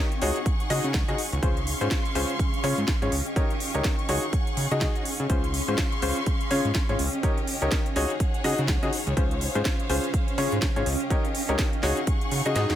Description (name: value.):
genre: piano house.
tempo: 124 BPM.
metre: 4/4.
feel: swing 59% on 16ths.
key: Db major.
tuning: A4 = 438 Hz.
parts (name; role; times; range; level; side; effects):
clear symphonic string section; sustained chords; 0.0-12.8 s; G4 to Db6; -34 LUFS; left 2 dB; sidechain pumping.
clear upright piano; riff; 0.0-12.8 s; Db4 to Eb5; -29 LUFS; left 2 dB; sidechain pumping, tape echo.
granular cloud pad; texture; 0.1-12.8 s; Db4 to Ab5; -34 LUFS; right 1 dB; built-in reverb, sidechain pumping.
house drum kit; drums; 0.1-12.8 s; hi-hat, snare drum; -31 LUFS; right 1 dB; none.
fat analog bass; bass; 0.2-12.8 s; Db2 to Db3; -28 LUFS; equal; sidechain pumping.
electronic kick drum; drums; 0.5-12.2 s; none; -26 LUFS; equal; none.
room: digital ambience.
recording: none.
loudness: -23 LUFS.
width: side -11 dB against mid.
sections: 0.0-12.8 A section.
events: kick drops out 12.6; drum fill 12.6.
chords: 0.2 Ab7sus4/Db; 1.4 Dbmaj7; 3.1 Eb7/Db; 4.1 Ab7sus4/Db; 5.3 Dbmaj7; 7.0 Eb7/Db; 8.0 Ab7sus4/Db; 9.2 Dbmaj7; 10.9 Eb7/Db; 11.8 Ab7sus4/Db.